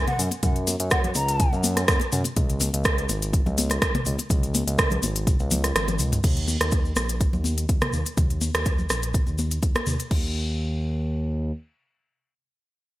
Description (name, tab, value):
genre	afro house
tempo	124 BPM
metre	4/4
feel	straight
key	Eb minor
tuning	A4 = 439 Hz
part	smooth synth bass	bass	0.0-11.5 s	Ab1 to Gb2	-26 LUFS	equal	sidechain pumping
part	bansuri	melody	0.1-1.5 s	Gb5 to Bb5	-30 LUFS	left 1 dB	digital delay
part	afro-pop drum kit	drums	0.1-10.2 s	crash cymbal, hi-hat, rim click, toms	-26 LUFS	equal	studio reverb, gated reverb
part	cabasa	percussion	0.1-10.1 s	none	-34 LUFS	left 4 dB	none
part	congas	percussion	0.1-9.8 s	none	-32 LUFS	left 2 dB	none
part	electronic kick drum	drums	0.4-10.2 s	none	-23 LUFS	equal	studio reverb
room	light reverb, studio reverb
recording	bright 1980s-style digital production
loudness	-21 LUFS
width	side -16 dB against mid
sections	0.0-6.2 A section; 6.2-10.1 B section; 10.1-13.0 C section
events	drop 0.0-6.2; kick drops out 5.8-6.2; drum fill 5.8-6.2; filter sweep on analog synth bass 6.2-10.1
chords	0.0 Gb5; 2.4 Db5; 6.2 Eb5; 10.1 N.C.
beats	| 0.43 0.91 1.40 1.88 | 2.37 2.85 3.33 3.82 | 4.30 4.79 5.27 5.75 | 6.24 6.72 7.21 7.69 | 8.17 8.66 9.14 9.62 | 10.11 10.59 11.08